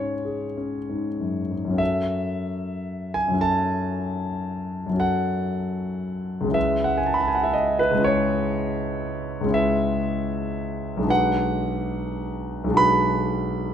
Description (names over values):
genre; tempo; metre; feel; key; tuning
classical, impressionist solo piano; 32-41 BPM (dotted quarters); 9/8; rubato; F# minor; A4 = 440 Hz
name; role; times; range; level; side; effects
clear concert grand piano; solo; 0.0-13.7 s; B1 to B5; -22 LUFS; equal; none
room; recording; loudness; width
light reverb; close, detailed microphones; -22 LUFS; side -8 dB against mid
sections
0.0-1.8 A section; 1.8-13.7 A section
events
none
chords
0.0 C#sus4; 1.8 F#m7; 6.6 C#m7; 11.1 Bm6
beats
| 1.80 3.42 5.01 | 6.55 8.04 9.54 | 11.10 12.79